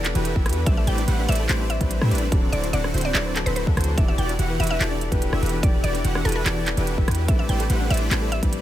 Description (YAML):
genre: future bass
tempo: 145 BPM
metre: 4/4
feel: half-time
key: E minor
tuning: A4 = 436 Hz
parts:
  - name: dark baby grand piano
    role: accompaniment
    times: 0.0-8.6 s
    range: E3 to C5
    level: -31 LUFS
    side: left 5 dB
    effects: sidechain pumping, tape echo
  - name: airy dreamy lead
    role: arpeggios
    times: 0.0-8.6 s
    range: B4 to F#5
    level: -34 LUFS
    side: right 1 dB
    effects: chorus, vintage 12-bit sampler grit, sidechain pumping
  - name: supersaw chords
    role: riff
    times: 0.0-8.6 s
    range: D3 to F#5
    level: -28 LUFS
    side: right 1 dB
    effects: sidechain pumping
  - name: warm 808-style bass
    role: bass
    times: 0.0-8.6 s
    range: D1 to A2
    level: -24 LUFS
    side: equal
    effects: sidechain pumping
  - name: trap drum kit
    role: drums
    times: 0.0-8.6 s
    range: handclaps, hi-hat, rim click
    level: -29 LUFS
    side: right 1 dB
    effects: none
  - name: soft round pluck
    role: arpeggios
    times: 0.2-8.5 s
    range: D4 to F#5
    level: -37 LUFS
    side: left 4 dB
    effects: none
  - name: electronic kick drum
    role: drums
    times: 0.4-8.5 s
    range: none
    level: -21 LUFS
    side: equal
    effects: none
  - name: mallet-like synth pluck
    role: melody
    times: 0.7-8.6 s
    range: A4 to G5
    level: -31 LUFS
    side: left 1 dB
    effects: chorus, sidechain pumping, ping-pong delay
room: little or no reverb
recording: none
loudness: -19 LUFS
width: side -13 dB against mid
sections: 0.0-8.6 A section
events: none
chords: 0.0 Em7; 0.7 Am11; 2.3 D7; 4.0 Em7; 7.3 Am11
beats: 0.25 | 0.67 1.08 1.49 1.91 | 2.32 2.73 3.15 3.56 | 3.98 4.39 4.80 5.22 | 5.63 6.04 6.46 6.87 | 7.29 7.70 8.11 8.53